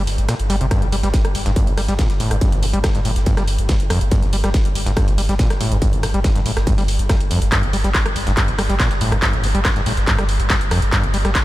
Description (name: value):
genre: driving peak-time techno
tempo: 141 BPM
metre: 4/4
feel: straight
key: G minor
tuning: A4 = 443 Hz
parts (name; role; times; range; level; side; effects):
- overdriven acid bass; riff; 0.0-11.3 s; G1 to G3; -22 LUFS; equal; distortion, vintage 12-bit sampler grit, sidechain pumping, ping-pong delay
- saturated sub bass; bass; 0.0-11.3 s; G1; -21 LUFS; equal; tube saturation, sidechain pumping, low-pass filter
- breakbeat sampler-style drum kit; drums; 0.1-11.4 s; hi-hat, ride cymbal, snare drum; -34 LUFS; right 1 dB; high-pass filter on snare, high-pass filter on cymbals, high-pass filter on hats
- techno drum kit; drums; 0.1-11.4 s; handclaps, hi-hat, rim click; -23 LUFS; equal; none
- electronic kick drum; drums; 0.7-11.4 s; none; -19 LUFS; equal; distortion
- riser; sound effects; 11.2-11.4 s; none; -38 LUFS; right 3 dB; none
room: light reverb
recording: none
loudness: -15 LUFS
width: side -16 dB against mid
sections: 0.0-11.4 A section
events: kick drops out 0.3-0.7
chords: none